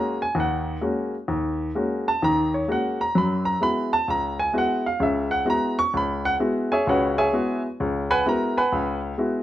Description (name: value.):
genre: jazz.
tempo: 129 BPM.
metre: 4/4.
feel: swing 66% on 8ths.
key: unclear.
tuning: A4 = 443 Hz.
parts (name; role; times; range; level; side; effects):
warm baby grand piano; solo; 0.0-9.4 s; Db2 to Db6; -21 LUFS; equal; none.
room: moderate large studio reverb, RT60 0.9 s.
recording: none.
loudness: -21 LUFS.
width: side -13 dB against mid.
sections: 0.0-9.4 A section.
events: none.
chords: 0.0 Ab9sus4; 3.1 Gb9sus4.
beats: 0.35 0.82 | 1.28 1.75 2.21 2.68 | 3.15 3.61 4.08 4.54 | 5.01 5.47 5.94 6.40 | 6.87 7.33 7.79 8.26 | 8.72 9.19.